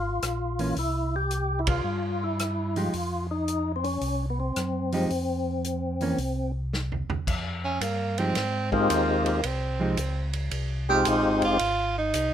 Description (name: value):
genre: soul jazz organ trio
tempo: 111 BPM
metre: 4/4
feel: swing 67% on 8ths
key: F minor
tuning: A4 = 440 Hz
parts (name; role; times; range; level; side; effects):
- percussive tonewheel organ; melody; 0.0-11.6 s; Ab3 to G4; -27 LUFS; left 2 dB; slow rotary speaker, overdrive, chorus vibrato
- mellow tonewheel organ; bass; 0.0-12.3 s; F1 to Ab2; -30 LUFS; equal; chorus vibrato, slow rotary speaker
- warm soul drum kit; drums; 0.2-12.3 s; crash cymbal, hi-hat, kick drum, ride cymbal, rim click, snare drum, toms; -33 LUFS; right 1 dB; none
- hollow-body jazz guitar; accompaniment; 0.6-10.0 s; E3 to G4; -28 LUFS; right 2 dB; none
- clear tenor saxophone; melody; 7.6-12.3 s; Bb3 to G4; -27 LUFS; right 3 dB; none
room: light reverb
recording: minimal, uncompressed stereo recording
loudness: -24 LUFS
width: side -9 dB against mid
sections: 0.0-7.3 A section; 7.3-12.3 B section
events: band accent 1.6; drum fill 6.7-7.3; tenor saxophone solo 7.3-12.3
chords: 0.0 Db; 0.8 C; 2.9 F7(no3); 6.2 N.C.; 7.3 Fm9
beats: 0.23 | 0.77 1.31 1.85 2.40 | 2.94 3.48 4.02 4.56 | 5.10 5.64 6.19 6.73 | 7.27 7.81 8.36 8.90 | 9.44 9.98 10.52 11.07 | 11.61 12.15